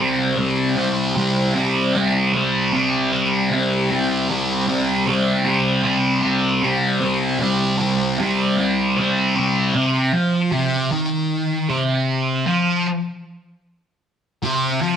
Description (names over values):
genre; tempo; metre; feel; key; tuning
rock; 51 BPM (dotted quarters); 6/8; straight; C minor; A4 = 441 Hz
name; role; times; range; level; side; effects
thick fuzz guitar; solo; 0.0-15.0 s; C3 to C4; -17 LUFS; equal; distortion, phaser
room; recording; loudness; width
moderate stone room reverb, RT60 1.2 s; band playing live in one room; -17 LUFS; side -8 dB against mid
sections
0.0-9.8 A section; 9.8-15.0 B section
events
none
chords
0.0 C5; 9.8 Cm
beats
| 0.39 1.56 | 2.73 3.90 | 5.07 6.24 | 7.41 8.58 | 9.75 10.92 | 12.09 13.26 | 14.43